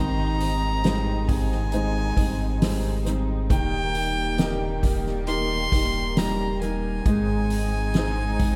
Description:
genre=pop ballad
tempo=68 BPM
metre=4/4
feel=straight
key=Ab major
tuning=A4 = 441 Hz
part: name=warm violin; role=melody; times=0.0-8.6 s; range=G5 to C6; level=-32 LUFS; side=equal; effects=analog delay
part: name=warm grand piano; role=accompaniment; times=0.0-8.6 s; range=Eb3 to C5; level=-32 LUFS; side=equal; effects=analog delay
part: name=warm studio string section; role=sustained chords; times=0.0-8.6 s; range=Eb3 to Eb4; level=-36 LUFS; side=equal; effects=none
part: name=fingerpicked steel-string acoustic guitar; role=arpeggios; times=0.0-8.6 s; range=Ab2 to C5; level=-34 LUFS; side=equal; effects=none
part: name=warm sub bass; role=bass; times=0.0-8.6 s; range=Eb1 to Ab1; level=-30 LUFS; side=equal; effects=none
part: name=soft-mallet drum kit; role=drums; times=0.4-8.6 s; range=hi-hat, kick drum, snare drum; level=-28 LUFS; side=equal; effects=none
room=little or no reverb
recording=echo-heavy mix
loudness=-24 LUFS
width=mono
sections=0.0-8.6 A section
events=none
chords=0.0 Abmaj7; 3.5 Eb; 7.1 Ab

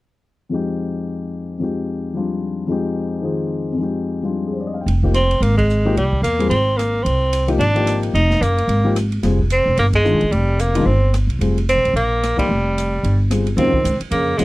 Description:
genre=modal jazz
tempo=220 BPM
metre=4/4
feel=swing 58% on 8ths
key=F dorian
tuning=A4 = 440 Hz
part: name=warm concert grand piano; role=accompaniment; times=0.5-14.4 s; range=F2 to G5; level=-21 LUFS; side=left 3 dB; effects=none
part: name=upright bass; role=bass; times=4.9-14.4 s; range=E1 to F2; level=-18 LUFS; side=equal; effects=none
part: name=open jazz drum kit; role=drums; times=4.9-14.4 s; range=hi-hat, kick drum, ride cymbal, rim click, snare drum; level=-29 LUFS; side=equal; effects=none
part: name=clear tenor saxophone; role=melody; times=5.1-14.4 s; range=G3 to Eb4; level=-18 LUFS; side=right 1 dB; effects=none
part: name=mellow trombone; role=second line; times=13.6-14.4 s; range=Db3 to Eb3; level=-24 LUFS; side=right 3 dB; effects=none
room=little or no reverb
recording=dry, close 1970s-style studio recording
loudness=-16 LUFS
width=side -19 dB against mid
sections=0.5-4.9 A section; 4.9-13.6 B section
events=band accent 5.6, 9.9, 12.4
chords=0.5 Fm9; 9.2 Eb (rootless); 13.6 Ebm9

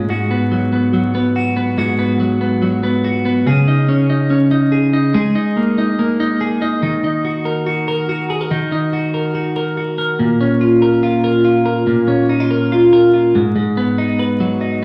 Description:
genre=indie pop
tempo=143 BPM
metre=4/4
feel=straight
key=G# dorian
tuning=A4 = 441 Hz
part: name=twelve-string electric guitar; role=solo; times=0.0-14.8 s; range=G#2 to B4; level=-16 LUFS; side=equal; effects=none
room=wet large studio reverb, RT60 1.1 s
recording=vinyl crackle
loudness=-16 LUFS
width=mono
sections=0.0-6.8 A section; 6.8-13.6 B section; 13.6-14.8 C section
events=none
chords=0.0 G#m7; 3.5 C#sus2; 5.1 G#sus2; 6.8 D#m; 10.2 A#m; 13.3 N.C.; 13.6 G#m7

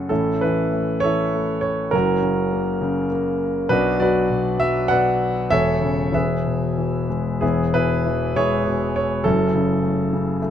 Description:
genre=classical, lyrical solo piano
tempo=92-104 BPM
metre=3/4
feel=rubato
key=A major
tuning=A4 = 441 Hz
part: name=warm concert grand piano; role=solo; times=0.0-10.5 s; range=E1 to F#5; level=-18 LUFS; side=equal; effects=none
room=light reverb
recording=close, detailed microphones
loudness=-18 LUFS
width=side -9 dB against mid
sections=0.1-10.5 A section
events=none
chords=0.1 A; 1.9 F#; 3.7 Bm; 5.5 A/E; 6.1 E; 9.3 F#m7

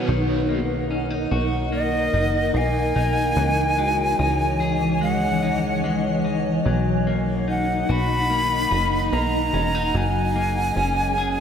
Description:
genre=dream pop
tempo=73 BPM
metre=4/4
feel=straight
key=B major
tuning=A4 = 439 Hz
part: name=overdriven electric guitar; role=accompaniment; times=0.0-0.6 s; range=F#3 to F#4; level=-31 LUFS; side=right 2 dB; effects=tremolo, ensemble chorus
part: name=granular cloud pad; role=sustained chords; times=0.0-11.4 s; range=E3 to G#5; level=-25 LUFS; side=equal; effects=built-in reverb, lush chorus
part: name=clean electric guitar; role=arpeggios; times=0.0-11.4 s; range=D#3 to G#4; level=-27 LUFS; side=left 3 dB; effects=lush chorus, ping-pong delay
part: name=vibraphone with hard mallets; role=texture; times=0.0-11.4 s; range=D#4 to B4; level=-35 LUFS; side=left 1 dB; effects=ping-pong delay
part: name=plucky analog bass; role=bass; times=0.1-11.4 s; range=E1 to C#2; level=-25 LUFS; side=right 1 dB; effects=none
part: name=breathy bright silver concert flute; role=melody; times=1.7-11.4 s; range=D#5 to B5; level=-23 LUFS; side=equal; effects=ping-pong delay
room=wet lush hall reverb, RT60 2.5 s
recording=dreamy mix soaked in reverb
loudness=-19 LUFS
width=side -8 dB against mid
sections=0.1-11.4 A section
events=none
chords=0.1 Bmaj7; 3.4 C#madd9; 6.7 Bmaj7; 9.9 F#add9

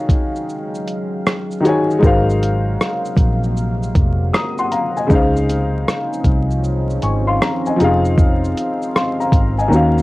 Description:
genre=lo-fi hip hop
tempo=78 BPM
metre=4/4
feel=swing 64% on 16ths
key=unclear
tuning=A4 = 440 Hz
part: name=dark upright piano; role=accompaniment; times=0.0-10.0 s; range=Db3 to Eb6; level=-18 LUFS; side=left 2 dB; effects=low-pass filter, cassette tape
part: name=deep dark ambient pad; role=sustained chords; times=0.0-10.0 s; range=C3 to F5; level=-25 LUFS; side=right 1 dB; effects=chorus, built-in reverb, low-pass filter, cassette tape
part: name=dusty soul sampler-style drum kit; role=drums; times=0.1-10.0 s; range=hi-hat, kick drum, rim click, shaker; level=-16 LUFS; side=equal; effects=cassette tape
part: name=vintage muted fingered electric bass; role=bass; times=2.0-10.0 s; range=F1 to Eb2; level=-18 LUFS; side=equal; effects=none
room=light reverb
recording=home recording on cassette, vinyl crackle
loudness=-15 LUFS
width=side -19 dB against mid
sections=0.0-10.0 A section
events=break 0.0-2.0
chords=0.0 Ebm11; 2.0 Ab13; 5.1 Dbmaj9; 7.8 Fm7

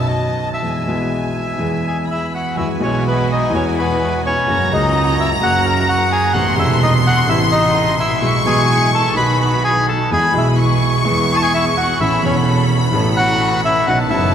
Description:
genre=tango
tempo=127 BPM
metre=4/4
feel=rubato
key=E major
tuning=A4 = 440 Hz
part: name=bandoneon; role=melody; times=0.0-14.3 s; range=B3 to B5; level=-18 LUFS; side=left 1 dB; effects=none
part: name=warm studio violin section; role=second line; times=0.0-14.3 s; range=G#5 to C#6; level=-21 LUFS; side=left 2 dB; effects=none
part: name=warm concert grand piano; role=accompaniment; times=0.0-14.3 s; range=E1 to A4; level=-20 LUFS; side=equal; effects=none
part: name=clear double bass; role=bass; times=0.0-14.3 s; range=E1 to E2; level=-20 LUFS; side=right 2 dB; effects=none
part: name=rich studio string section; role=stabs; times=2.6-14.3 s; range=G#3 to A4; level=-26 LUFS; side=equal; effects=none
room=wet cathedral reverb, RT60 4.7 s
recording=recorded in a church or concert hall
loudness=-14 LUFS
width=side -8 dB against mid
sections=0.0-2.6 A section; 2.6-14.3 A section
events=none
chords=0.0 Badd9; 0.6 E; 2.6 Eadd9; 4.5 F#; 6.3 Amadd9; 8.2 E/B; 9.2 B; 10.1 E; 12.0 Aadd9

